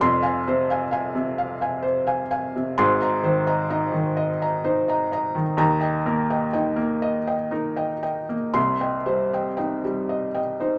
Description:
neoclassical minimalist piano; 38-44 BPM (dotted quarters); 6/8; rubato; F minor; A4 = 440 Hz
felt-muted upright piano; solo; 0.0-10.8 s; F1 to C6; -23 LUFS; equal
moderate club reverb, RT60 0.7 s; -24 LUFS; mono
0.0-10.8 A section
0.0 Fm; 2.8 Abadd9; 5.6 Eb; 8.6 Cm
| 0.00 1.39 | 2.79 4.17 | 5.59 7.04 | 8.55 10.10

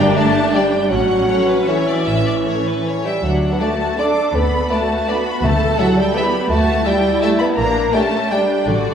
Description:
classical, orchestral ballroom waltz; 148-180 BPM; 3/4; rubato; D major; A4 = 440 Hz
rich studio violin section; second line; 0.0-8.9 s; D5 to D6; -24 LUFS; left 2 dB
clear studio viola section; accompaniment; 0.0-8.9 s; C#4 to A4; -23 LUFS; left 1 dB
mellow bassoon; accompaniment; 0.0-8.9 s; D3 to D4; -18 LUFS; right 1 dB
rich studio cello section; bass; 0.0-8.9 s; D3 to D4; -22 LUFS; right 1 dB
rich studio double bass section; bass; 0.0-8.9 s; G1 to D2; -23 LUFS; right 1 dB
rich studio violin section; melody; 0.2-8.4 s; B4 to G5; -28 LUFS; left 4 dB
warm French horn section; sustained chords; 0.2-8.5 s; C#4 to A4; -28 LUFS; left 2 dB
timpani; percussion; 5.4-5.9 s; D3; -25 LUFS; left 4 dB
wet scoring stage reverb, RT60 1.7 s; heard from further back in the room; -14 LUFS; side -8 dB against mid
0.0-8.9 A section
0.0 G5; 0.9 A; 3.2 D; 5.4 Em7/D; 7.6 Gm/Bb
0.17 0.55 | 0.91 1.29 1.69 | 2.06 2.45 2.85 | 3.23 3.60 3.98 | 4.34 4.71 5.08 | 5.43 5.78 6.15 | 6.50 6.85 7.23 | 7.58 7.94 8.32 | 8.67

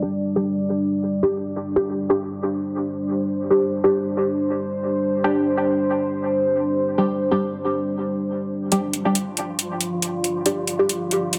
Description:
deep dubstep; 138 BPM; 4/4; swing 54% on 16ths, half-time; A4 = 441 Hz
deep dark ambient pad; sustained chords; 0.0-11.4 s; G3 to D5; -25 LUFS; equal; chorus, built-in reverb
filtered dub chord stab; stabs; 0.0-10.9 s; G3 to G4; -25 LUFS; equal; phaser, subtle chorus, dub echo
electronic hi-hat; drums; 8.7-11.4 s; -25 LUFS; equal
wind-like tuned noise texture; texture; 9.2-11.4 s; F3 to F4; -30 LUFS; equal; built-in reverb
moderate echo chamber reverb, RT60 1.8 s, digital ambience; echo-heavy mix, low-pass filter; -22 LUFS; mono
0.0-8.7 A section; 8.7-11.4 B section
filter sweep on synth stab 0.0-8.7; filter sweep on ambient pad 0.0-8.7, 8.7-11.4; filter sweep 0.0-8.7; build-up 8.7-11.4
0.0 G5
| 0.02 0.46 0.89 1.33 | 1.76 2.20 2.63 3.07 | 3.50 3.94 4.37 4.81 | 5.24 5.68 6.11 6.55 | 6.98 7.42 7.85 8.29 | 8.72 9.15 9.59 10.02 | 10.46 10.89 11.33

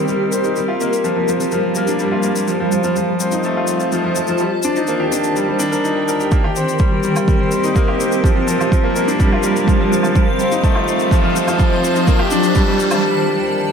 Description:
piano and strings electronica; 125 BPM; 4/4; straight; G minor; A4 = 440 Hz
granular cloud pad; sustained chords; 0.0-13.7 s; Eb3 to A5; -20 LUFS; equal; built-in reverb, sidechain pumping
bright concert grand piano; riff; 0.0-13.7 s; F3 to Bb4; -18 LUFS; equal; digital delay
warm sub bass; bass; 0.0-13.0 s; barely audible
shaker and woodblock; drums; 0.1-13.0 s; -28 LUFS; left 3 dB
electronic kick drum; drums; 6.3-12.7 s; -16 LUFS; right 1 dB; overdrive
riser; sound effects; 8.5-13.0 s; -25 LUFS; left 2 dB
moderate scoring stage reverb, RT60 1.7 s; -14 LUFS; side -6 dB against mid
0.0-13.7 A section
build-up 0.0-13.7; filter sweep on ambient pad 0.0-13.7; riser 8.5-13.0; break 13.0-13.7
0.0 Cm7; 0.6 Gm7; 2.5 F7; 4.4 Ebmaj7; 6.3 Cm7; 8.2 Gm7; 10.2 F7; 12.1 Ebmaj7
0.08 | 0.56 1.04 1.52 2.00 | 2.48 2.96 3.44 3.92 | 4.40 4.88 5.36 5.84 | 6.32 6.80 7.28 7.76 | 8.24 8.72 9.20 9.68 | 10.16 10.64 11.12 11.60 | 12.08 12.56 13.04 13.52

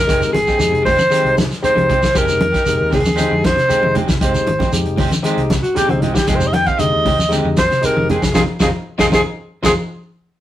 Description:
afrobeat; 116 BPM; 4/4; straight; F dorian; A4 = 442 Hz
breathy alto saxophone; melody; 0.0-9.7 s; C4 to G5; -16 LUFS; equal
fingered electric bass; bass; 0.0-9.7 s; F1 to F2; -23 LUFS; equal
barky tine electric piano; accompaniment; 0.1-9.7 s; Ab3 to G4; -24 LUFS; left 3 dB; overdrive
clean electric guitar; stabs; 0.1-9.7 s; Ab3 to G4; -26 LUFS; right 4 dB
warm soul drum kit; drums; 0.1-9.8 s; hi-hat, kick drum, snare drum; -21 LUFS; equal
shekere; percussion; 0.1-9.8 s; -26 LUFS; right 2 dB
electric guitar at the edge of break-up; arpeggios; 0.3-9.7 s; C3 to F3; -24 LUFS; left 4 dB
congas; percussion; 0.3-9.8 s; -22 LUFS; right 1 dB
moderate studio reverb, RT60 0.6 s; rough rehearsal-room recording, warm saturation; -13 LUFS; side -13 dB against mid
0.0-10.4 A section
alto saxophone solo 0.0-10.4; band accent 8.3-10.4; tine electric piano fill 9.4-10.4; drum fill 9.6-10.4
0.0 Fm9
| 0.08 0.60 1.12 1.63 | 2.15 2.67 3.18 3.70 | 4.21 4.73 5.25 5.76 | 6.28 6.79 7.31 7.83 | 8.34 8.86 9.37

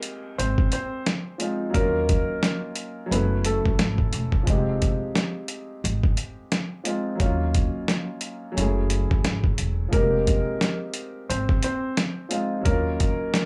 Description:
hip hop, boom-bap hip-hop; 88 BPM; 4/4; swing 59% on 16ths; F phrygian; A4 = 440 Hz
warm grand piano; accompaniment; 0.0-13.5 s; F3 to A4; -32 LUFS; equal; cassette tape, high-pass filter, low-pass filter
dusty soul sampler-style drum kit; drums; 0.0-13.5 s; hi-hat, kick drum, snare drum; -26 LUFS; equal
warm upright piano; melody; 0.4-4.4, 9.9-13.5 s; A3 to C5; -30 LUFS; equal; high-pass filter, low-pass filter, analog delay
upright bass; bass; 0.4-13.1 s; Fb1 to Eb2; -28 LUFS; equal; transformer saturation
light reverb; dry, gritty hardware recording, small room ambience; -24 LUFS; mono
0.0-13.5 A section
0.0 Fm9; 1.7 Ebm9; 3.1 Gbm9; 4.5 Fm9; 7.2 Ebm9; 8.6 Gbm9; 9.9 Fm9; 12.7 Ebm9
0.38 1.06 | 1.75 2.43 3.11 3.79 | 4.47 5.16 5.84 6.52 | 7.20 7.88 8.56 9.24 | 9.93 10.61 11.29 11.97 | 12.65 13.34

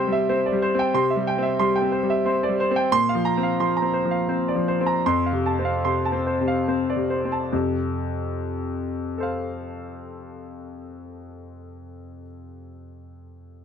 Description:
neoclassical minimalist piano; 70-93 BPM; 3/4; rubato; F major; A4 = 440 Hz
clear concert grand piano; solo; 0.0-13.6 s; F2 to C6; -22 LUFS; equal
little or no reverb; close, detailed microphones; -20 LUFS; side -7 dB against mid
0.0-7.5 A section; 7.5-12.5 B section
slowing down 1.9-7.5
0.0 C; 2.9 Bbsus2; 5.0 F
0.28 | 0.93 1.58 2.25 | 2.91 3.58 4.29 | 5.05 5.84 6.67 | 7.52 8.35 9.18 | 10.02 10.86 11.71

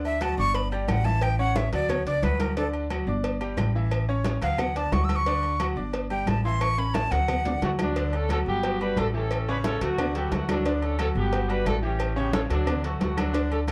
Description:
latin, salsa; 178 BPM; 4/4; straight; D major; A4 = 440 Hz
bright grand piano; accompaniment; 0.0-13.7 s; C#3 to D6; -33 LUFS; equal
upright bass; bass; 0.0-13.7 s; G1 to D2; -30 LUFS; equal
congas; percussion; 0.0-13.7 s; -35 LUFS; equal
breathy bright jazz flute; melody; 0.1-7.6 s; A4 to E6; -30 LUFS; equal
agogo bells and timbales; percussion; 0.1-13.7 s; -40 LUFS; equal
claves; percussion; 0.2-13.7 s; -47 LUFS; equal
cowbell; percussion; 0.2-13.7 s; -38 LUFS; equal
clear horn section; melody; 7.6-13.7 s; F#3 to B4; -32 LUFS; equal
light reverb; dark, warm production; -26 LUFS; mono
0.0-8.0 A section; 8.0-13.7 B section
flute solo 0.0-8.0; drum fill 6.6-8.0
0.0 Dmaj7; 0.6 G5; 1.2 A; 1.9 Dmaj7; 3.2 G5; 3.9 A; 4.6 Dmaj7; 5.9 G5; 6.6 A; 7.3 D; 8.0 Dmaj7; 8.6 Gmaj7; 9.3 A7; 10.0 D; 11.3 Gmaj7; 12.0 A7; 12.7 D
0.21 0.55 0.89 | 1.23 1.56 1.90 2.23 | 2.57 2.91 3.24 3.58 | 3.92 4.25 4.59 4.93 | 5.26 5.60 5.94 6.28 | 6.61 6.95 7.29 7.62 | 7.96 8.30 8.63 8.97 | 9.31 9.64 9.98 10.32 | 10.65 10.99 11.33 11.66 | 12.00 12.34 12.67 13.01 | 13.35 13.68

